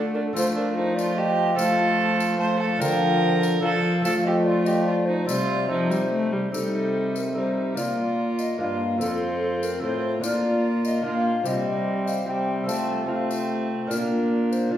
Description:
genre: classical, renaissance-style consort dance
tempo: 146 BPM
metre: 3/4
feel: straight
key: unclear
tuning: A4 = 440 Hz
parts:
  - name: mellow hollow tenor recorder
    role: melody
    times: 0.0-14.8 s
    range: A4 to A5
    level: -28 LUFS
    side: left 3 dB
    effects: none
  - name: rich violin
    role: second line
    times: 0.0-14.8 s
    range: C4 to C5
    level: -29 LUFS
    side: right 4 dB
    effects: none
  - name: lute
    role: accompaniment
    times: 0.0-14.8 s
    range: F2 to G4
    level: -30 LUFS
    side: equal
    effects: none
  - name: warm viola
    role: accompaniment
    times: 0.0-14.8 s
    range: F3 to C4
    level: -26 LUFS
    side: left 1 dB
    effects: none
  - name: clear trombone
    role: bass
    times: 0.0-14.8 s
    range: F2 to F3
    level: -28 LUFS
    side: right 1 dB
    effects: none
  - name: tambourine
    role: percussion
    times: 0.4-14.7 s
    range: none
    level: -39 LUFS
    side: left 6 dB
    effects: none
room: wet recital hall reverb, RT60 1.3 s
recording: heard from further back in the room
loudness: -21 LUFS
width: side -11 dB against mid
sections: 0.0-6.5 A section; 6.5-14.8 B section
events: none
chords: 0.4 F; 2.8 Dm; 4.0 F; 5.3 Cm; 7.8 Bb; 9.0 F; 10.2 Bb; 11.5 Cm; 12.7 F/C; 13.9 Bb

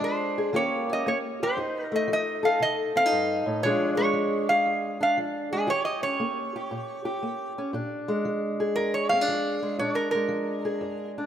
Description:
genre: acoustic country blues, solo or duo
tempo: 117 BPM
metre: 4/4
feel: swing 68% on 8ths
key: Bb mixolydian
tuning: A4 = 439 Hz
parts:
  - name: metal-body resonator slide guitar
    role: melody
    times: 0.0-11.1 s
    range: Ab4 to F5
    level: -26 LUFS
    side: right 1 dB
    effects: none
  - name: fingerpicked steel-string acoustic guitar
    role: accompaniment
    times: 0.0-11.3 s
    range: F2 to A4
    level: -27 LUFS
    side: left 1 dB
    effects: none
room: moderate lush hall reverb, RT60 2.6 s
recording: rough home demo mix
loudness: -24 LUFS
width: side -9 dB against mid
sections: 0.0-3.6 A section; 3.6-11.3 B section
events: resonator guitar played with a steel bar solo 3.6-11.3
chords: 0.0 Bb7 (rootless); 0.5 Eb7; 1.6 F7; 3.6 Bb7; 5.7 Eb7; 7.7 Bb7

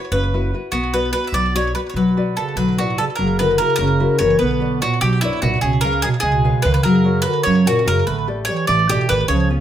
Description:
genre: italian folk, Italian serenade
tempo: 98 BPM (dotted quarters)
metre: 6/8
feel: straight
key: B minor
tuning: A4 = 440 Hz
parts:
  - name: nylon-string guitar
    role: accompaniment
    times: 0.0-9.6 s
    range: C#3 to E#5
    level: -20 LUFS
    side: left 4 dB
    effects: none
  - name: bowl-back mandolin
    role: melody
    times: 0.1-9.5 s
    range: E4 to E5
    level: -20 LUFS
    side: right 2 dB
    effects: slapback echo
  - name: upright bass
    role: bass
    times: 0.1-9.6 s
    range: F#1 to F#2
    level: -22 LUFS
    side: right 1 dB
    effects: none
  - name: dark bass clarinet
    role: second line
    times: 2.4-9.5 s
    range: G2 to F#3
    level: -21 LUFS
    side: right 5 dB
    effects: none
room: wet studio reverb, RT60 0.5 s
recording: none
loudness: -15 LUFS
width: side -10 dB against mid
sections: 0.0-3.2 A section; 3.2-9.6 B section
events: none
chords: 0.0 F#7sus4; 0.7 Bm; 3.2 F#7; 4.4 Bmadd9; 5.6 C#7; 6.8 F#; 8.1 A7sus4

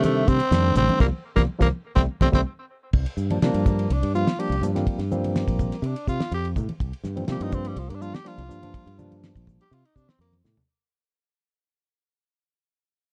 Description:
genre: electric jazz fusion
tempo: 124 BPM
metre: 4/4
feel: straight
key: C dorian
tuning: A4 = 440 Hz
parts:
  - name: growling tenor saxophone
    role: melody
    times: 0.0-10.3 s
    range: F3 to G4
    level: -30 LUFS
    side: equal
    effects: none
  - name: barky tine electric piano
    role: accompaniment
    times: 0.0-9.6 s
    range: Eb3 to F4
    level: -30 LUFS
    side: equal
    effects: none
  - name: modern bright fingered electric bass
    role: bass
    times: 0.0-10.6 s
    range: A1 to C3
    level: -28 LUFS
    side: equal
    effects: none
  - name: damped 70s drum kit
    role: drums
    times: 0.0-10.7 s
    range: crash cymbal, hi-hat, kick drum, ride cymbal, snare drum, toms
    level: -26 LUFS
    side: equal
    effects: none
  - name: congas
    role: percussion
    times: 0.0-10.7 s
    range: none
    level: -32 LUFS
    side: equal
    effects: none
room: little or no reverb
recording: dark, warm production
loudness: -24 LUFS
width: mono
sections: 0.0-2.9 A section; 2.9-10.7 B section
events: band accent 1.0-2.9; drum fill 2.0-2.9, 10.2-10.7; fade-out 2.9-10.7; tenor saxophone solo 2.9-10.7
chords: 0.0 Cm69; 1.0 Gm7/C; 1.7 C5; 2.9 C9sus4

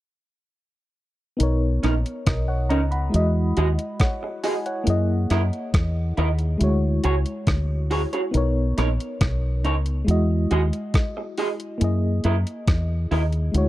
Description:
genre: lovers rock reggae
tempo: 69 BPM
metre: 4/4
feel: straight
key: B major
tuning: A4 = 440 Hz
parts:
  - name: mellow FM electric piano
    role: accompaniment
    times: 1.4-13.7 s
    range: G#3 to B5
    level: -27 LUFS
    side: left 1 dB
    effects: chorus, tremolo
  - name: deep dub fingered electric bass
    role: bass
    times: 1.4-13.7 s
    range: A#1 to F#2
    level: -21 LUFS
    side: equal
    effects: none
  - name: gated 80s digital drum machine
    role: drums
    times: 1.4-13.7 s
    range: hi-hat, kick drum, rim click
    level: -23 LUFS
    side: equal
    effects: overdrive
  - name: electric guitar through a small old amp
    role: stabs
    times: 1.8-13.2 s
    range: C#4 to D#5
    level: -25 LUFS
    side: right 3 dB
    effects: wide subtle chorus
room: little or no reverb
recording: dry, close 1970s-style studio recording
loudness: -20 LUFS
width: side -15 dB against mid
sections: 1.4-13.7 A section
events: none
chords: 1.4 Bmaj9; 3.1 Emaj9; 4.9 F#13; 6.6 Dmaj9#11; 8.3 Bmaj9; 10.1 Emaj9; 11.8 F#13

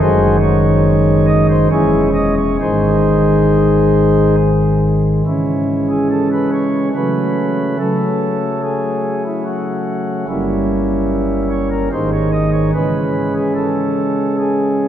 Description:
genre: classical, chorale-style piece for pipe organ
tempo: 66-74 BPM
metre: 3/4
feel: rubato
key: C# minor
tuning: A4 = 440 Hz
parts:
  - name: pipe organ, flutes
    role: solo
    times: 0.0-14.9 s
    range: E1 to D#5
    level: -13 LUFS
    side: equal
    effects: none
room: wet church reverb, RT60 3.6 s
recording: dark, warm production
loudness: -13 LUFS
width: side -10 dB against mid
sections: 0.0-5.3 A section; 5.3-14.9 B section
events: none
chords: 0.0 G#5/F#; 1.7 C#m/E; 2.6 G#; 5.3 C#m; 6.9 F#m/C#; 10.3 Gdim7; 11.9 G#5; 12.7 C#m

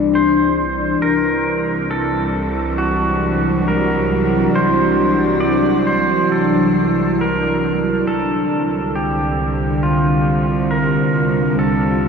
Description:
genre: ambient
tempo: 68 BPM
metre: 4/4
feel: straight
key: unclear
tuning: A4 = 444 Hz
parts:
  - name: evolving wavetable pad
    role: sustained chords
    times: 0.0-12.1 s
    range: D3 to G4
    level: -17 LUFS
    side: equal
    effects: chorus, built-in reverb
  - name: bright symphonic cello section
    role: bass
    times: 0.0-12.1 s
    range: C2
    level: -23 LUFS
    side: equal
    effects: none
  - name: pedal steel guitar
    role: melody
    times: 0.2-12.1 s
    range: F4 to D5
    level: -20 LUFS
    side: right 1 dB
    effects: ping-pong delay
room: wet huge ambient reverb, RT60 7.5 s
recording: dark, warm production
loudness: -15 LUFS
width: side -6 dB against mid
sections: 0.0-12.1 A section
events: none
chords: 0.0 C; 1.0 D7/C; 8.1 Bbmaj7/C

